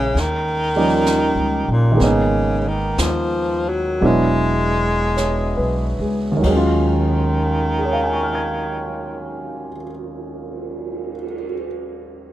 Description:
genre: jazz ballad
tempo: 44-69 BPM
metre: 4/4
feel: swing 68% on 8ths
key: Eb minor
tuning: A4 = 440 Hz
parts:
  - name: warm baritone saxophone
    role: melody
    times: 0.0-9.8 s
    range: Bb2 to G#3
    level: -22 LUFS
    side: left 1 dB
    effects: none
  - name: warm concert grand piano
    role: accompaniment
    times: 0.0-12.3 s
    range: Eb2 to Ab6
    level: -21 LUFS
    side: right 1 dB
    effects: none
  - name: upright bass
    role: bass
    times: 0.0-9.7 s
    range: E1 to Eb2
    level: -22 LUFS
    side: equal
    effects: none
  - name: jazz brush drum kit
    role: drums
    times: 0.2-11.6 s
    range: brushed snare drum, cymbal swell, hi-hat, kick drum, ride cymbal, snare drum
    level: -29 LUFS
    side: right 2 dB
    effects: none
room: light reverb, small room ambience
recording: rough home demo mix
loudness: -17 LUFS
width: side -13 dB against mid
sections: 0.0-2.0 A section; 2.0-6.4 B section; 6.4-11.8 C section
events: slowing down 0.0-6.4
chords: 0.2 Eb7; 2.0 Abmadd9; 4.0 E7; 6.4 Ebm11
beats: 0.16 1.05 | 1.99 2.97 4.03 5.17 | 6.44 7.78 9.12 10.47

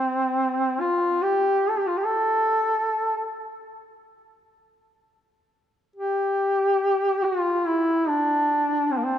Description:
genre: caucasian folk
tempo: 71 BPM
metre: 4/4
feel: rubato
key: unclear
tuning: A4 = 440 Hz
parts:
  - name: warm duduk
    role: solo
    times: 0.0-9.2 s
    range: Bb3 to A4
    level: -21 LUFS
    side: equal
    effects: none
room: wet church reverb, RT60 2.6 s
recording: none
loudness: -21 LUFS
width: side -10 dB against mid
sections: 0.0-9.2 A section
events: none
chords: none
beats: 0.79 1.63 | 2.46 3.31 4.17 5.05 | 5.94 6.79 7.64 8.48

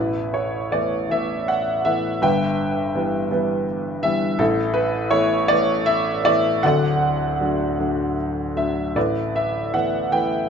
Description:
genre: classical, lyrical solo piano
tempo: 50-57 BPM (dotted quarters)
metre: 6/8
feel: rubato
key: unclear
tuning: A4 = 440 Hz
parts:
  - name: warm baby grand piano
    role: solo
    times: 0.0-10.5 s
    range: D1 to G5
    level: -19 LUFS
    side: equal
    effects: none
room: light reverb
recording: nothing above 7.8 kHz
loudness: -19 LUFS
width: side -7 dB against mid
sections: 0.0-10.5 A section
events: none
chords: 0.0 Asus2; 2.2 Em/G; 4.4 Asus2; 6.6 D; 9.0 Asus2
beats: 1.10 | 2.22 3.32 | 4.40 5.50 | 6.65 7.80 | 8.96 10.12

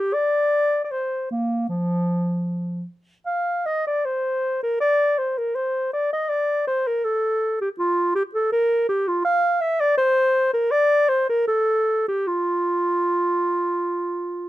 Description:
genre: classical, baroque-style fantasia for unaccompanied clarinet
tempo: 79 BPM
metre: 4/4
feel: uneven beats, rubato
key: F major from 9.3 s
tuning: A4 = 440 Hz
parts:
  - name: mellow clarinet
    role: solo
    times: 0.0-14.5 s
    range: F3 to F5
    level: -20 LUFS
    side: equal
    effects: none
room: little or no reverb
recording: close, detailed microphones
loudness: -20 LUFS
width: side -15 dB against mid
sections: 0.0-14.5 A section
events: none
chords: none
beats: | 0.14 0.93 1.70 2.48 | 3.27 4.05 4.81 5.56 | 6.30 7.04 7.79 8.52 | 9.26 9.99 10.72 11.49 | 12.29 13.10 13.91

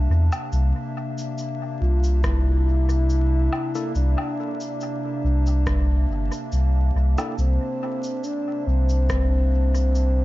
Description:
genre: ambient dub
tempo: 70 BPM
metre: 4/4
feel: swing 53% on 16ths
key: C mixolydian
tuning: A4 = 439 Hz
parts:
  - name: warbly tape-like pad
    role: sustained chords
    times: 0.0-10.2 s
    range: C3 to A5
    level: -31 LUFS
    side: left 1 dB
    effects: chorus, built-in reverb
  - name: warm sub bass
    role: bass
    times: 0.0-10.2 s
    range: G1 to E2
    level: -19 LUFS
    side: equal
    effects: none
  - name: electronic shaker, woodblock and rim click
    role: drums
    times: 0.3-10.1 s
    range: none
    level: -35 LUFS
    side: left 1 dB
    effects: dub echo
  - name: trombone with bucket mute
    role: melody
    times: 1.8-10.2 s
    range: C4 to F4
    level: -28 LUFS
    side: equal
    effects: dub echo
  - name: electronic kick drum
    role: drums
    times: 2.2-9.3 s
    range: none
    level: -30 LUFS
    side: equal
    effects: none
  - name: tine electric piano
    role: stabs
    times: 3.8-7.3 s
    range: Bb3 to A4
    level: -37 LUFS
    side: right 1 dB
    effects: medium stereo tremolo, dub echo
room: digital ambience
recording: dark, warm production, vinyl crackle, nothing above 7.5 kHz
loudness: -20 LUFS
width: side -17 dB against mid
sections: 0.0-10.2 A section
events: none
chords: 0.0 C13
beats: | 0.53 1.38 2.24 3.10 | 3.95 4.81 5.67 6.53 | 7.38 8.24 9.10 9.95

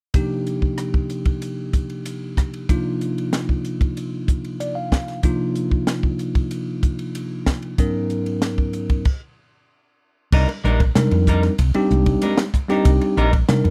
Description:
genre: electric jazz fusion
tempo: 94 BPM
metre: 4/4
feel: straight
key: C minor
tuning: A4 = 439 Hz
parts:
  - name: bell-like tine electric piano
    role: accompaniment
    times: 0.1-13.7 s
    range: Ab2 to F5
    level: -25 LUFS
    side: equal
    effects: none
  - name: crisp fusion drum kit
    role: drums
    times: 0.1-13.7 s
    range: crash cymbal, hi-hat, kick drum, ride cymbal, rim click, snare drum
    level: -22 LUFS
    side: equal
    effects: none
  - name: clean electric guitar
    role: stabs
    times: 10.3-13.7 s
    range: G3 to Bb4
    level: -27 LUFS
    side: equal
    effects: subtle chorus
  - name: woody fretless electric bass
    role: bass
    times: 10.3-13.7 s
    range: Bb1 to C3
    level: -20 LUFS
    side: equal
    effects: none
  - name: congas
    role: percussion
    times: 10.3-13.6 s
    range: none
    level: -29 LUFS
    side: equal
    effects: none
room: little or no reverb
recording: dry, close 1970s-style studio recording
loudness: -21 LUFS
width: mono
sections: 0.1-10.3 A section; 10.3-13.7 B section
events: tine electric piano fill 4.3-5.2; stop 9.1-10.3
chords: 0.1 Cm11; 7.8 Abm11; 10.3 Cm11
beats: | 0.15 0.79 1.42 2.06 | 2.69 3.33 3.97 4.60 | 5.24 5.88 6.51 7.15 | 7.78 8.42 9.05 9.69 | 10.32 10.96 11.59 12.22 | 12.86 13.49

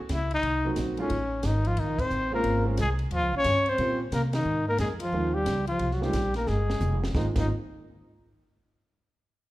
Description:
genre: jazz, small-group swing and bop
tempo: 179 BPM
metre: 4/4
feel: swing 64% on 8ths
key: Ab major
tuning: A4 = 439 Hz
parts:
  - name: breathy trumpet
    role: melody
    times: 0.1-7.5 s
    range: Db4 to Db5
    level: -28 LUFS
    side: left 2 dB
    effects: none
  - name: upright bass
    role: bass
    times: 0.1-7.5 s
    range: F1 to C3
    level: -29 LUFS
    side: equal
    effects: none
  - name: compact cocktail drum kit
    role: drums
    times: 0.1-7.4 s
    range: crash cymbal, hi-hat, kick drum, ride cymbal, snare drum, toms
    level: -35 LUFS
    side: equal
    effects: none
  - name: dark concert grand piano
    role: accompaniment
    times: 0.7-7.5 s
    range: Gb3 to Gb4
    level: -33 LUFS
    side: right 2 dB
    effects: none
  - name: breathy trombone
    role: second line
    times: 1.4-7.5 s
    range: Eb3 to Db4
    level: -33 LUFS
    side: right 1 dB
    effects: none
room: moderate recital hall reverb, RT60 1.6 s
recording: recorded in a church or concert hall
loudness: -24 LUFS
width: side -16 dB against mid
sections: 0.0-7.1 A section; 7.1-8.5 B section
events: band accent 1.9, 4.3; drum fill 6.5-7.1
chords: 0.4 Cm7b5; 1.1 F7alt; 1.8 Bbm9; 3.1 Eb13 (rootless); 4.5 Ab69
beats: 0.10 | 0.44 0.77 1.10 1.44 | 1.78 2.11 2.45 2.78 | 3.12 3.45 3.79 4.12 | 4.46 4.80 5.13 5.47 | 5.80 6.14 6.48 6.81 | 7.15

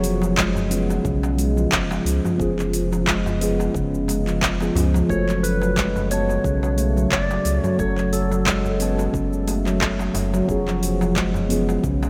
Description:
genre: organic downtempo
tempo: 89 BPM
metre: 4/4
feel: swing 55% on 16ths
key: F# harmonic minor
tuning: A4 = 440 Hz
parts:
  - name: muted felt-like synth keys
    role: accompaniment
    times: 0.0-12.1 s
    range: C#3 to A5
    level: -31 LUFS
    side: equal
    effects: chorus, sidechain pumping, delay
  - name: handpan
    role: arpeggios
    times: 0.0-12.1 s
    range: C#3 to B3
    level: -25 LUFS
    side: equal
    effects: delay
  - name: warm sub bass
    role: bass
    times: 0.0-12.1 s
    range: E#1 to C#2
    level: -27 LUFS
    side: equal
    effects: sidechain pumping
  - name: deep house drum kit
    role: drums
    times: 0.0-12.1 s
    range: cabasa, handclaps, hi-hat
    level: -29 LUFS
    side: equal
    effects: overdrive
  - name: darbuka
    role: percussion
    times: 0.2-12.1 s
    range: none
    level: -36 LUFS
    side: equal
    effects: none
  - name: electronic kick drum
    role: drums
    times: 0.4-12.0 s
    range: none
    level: -31 LUFS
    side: equal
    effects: overdrive
  - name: clean lap steel guitar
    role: melody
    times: 5.1-9.1 s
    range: A4 to D5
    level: -30 LUFS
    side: equal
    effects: digital delay
room: moderate lush hall reverb, RT60 2.4 s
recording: rough home demo mix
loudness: -21 LUFS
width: mono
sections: 0.0-12.1 A section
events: none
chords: 0.0 C#7/E#; 5.1 F#m; 10.5 C#7/E#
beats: 0.37 1.05 1.72 | 2.40 3.07 3.75 4.42 | 5.09 5.77 6.44 7.12 | 7.79 8.46 9.14 9.81 | 10.49 11.16 11.84

